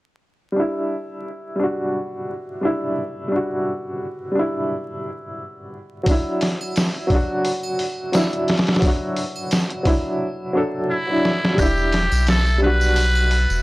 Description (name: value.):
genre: trip hop.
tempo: 87 BPM.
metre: 4/4.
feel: swing 56% on 16ths.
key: E minor.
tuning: A4 = 441 Hz.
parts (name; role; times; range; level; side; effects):
warm upright piano; accompaniment; 0.5-13.6 s; F#3 to A4; -22 LUFS; equal; tremolo, vintage 12-bit sampler grit, low-pass filter, tape echo.
trip hop sampler-style drum kit; drums; 6.1-13.5 s; hi-hat, kick drum, snare drum; -20 LUFS; equal; none.
triangle and tambourine; percussion; 6.6-13.6 s; none; -35 LUFS; right 3 dB; none.
trumpet with metal mute; melody; 10.9-13.6 s; E4 to B4; -21 LUFS; equal; none.
soft dub sub bass; bass; 11.6-13.6 s; E1 to B1; -18 LUFS; equal; tube saturation.
room: small room ambience.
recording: dry, gritty hardware recording, transformer saturation, vinyl crackle.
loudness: -18 LUFS.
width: side -20 dB against mid.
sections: 0.5-11.6 A section; 11.6-13.6 B section.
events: drum fill 11.2-11.6.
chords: 0.5 Em7; 6.1 Dadd9; 11.6 Em7.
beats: | 0.55 1.24 1.93 2.62 | 3.31 4.00 4.69 5.38 | 6.07 6.76 7.45 8.13 | 8.82 9.52 10.20 10.89 | 11.58 12.27 12.96.